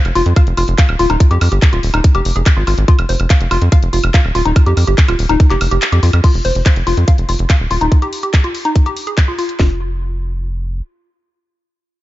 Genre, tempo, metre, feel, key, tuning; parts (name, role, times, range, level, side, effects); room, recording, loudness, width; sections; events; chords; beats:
psychedelic trance; 143 BPM; 4/4; straight; F minor; A4 = 438 Hz
tight sequencer bass; bass; 0.1-10.8 s; Eb1 to F2; -15 LUFS; equal
garage drum kit; drums; 0.1-9.6 s; crash cymbal, handclaps, hi-hat, woodblock; -21 LUFS; equal; small room ambience
woody wave-folded pluck; riff; 0.2-9.8 s; Eb4 to F5; -19 LUFS; left 1 dB; chorus, auto-pan, cassette tape, sidechain pumping, digital delay
garage drum kit; drums; 0.4-9.7 s; handclaps, kick drum, snare drum; -10 LUFS; equal; small room ambience
digital ambience; dark, warm production, nothing above 7.5 kHz; -11 LUFS; side -16 dB against mid
0.0-6.2 A section; 6.2-9.6 B section; 9.6-12.0 C section
drop 0.0-6.2; kick drops out 5.8-6.2
0.0 F5; 9.6 N.C.
0.36 0.78 | 1.20 1.62 2.04 2.46 | 2.88 3.30 3.72 4.14 | 4.56 4.98 5.40 5.82 | 6.24 6.66 7.08 7.50 | 7.92 8.34 8.76 9.18 | 9.60 10.02 10.43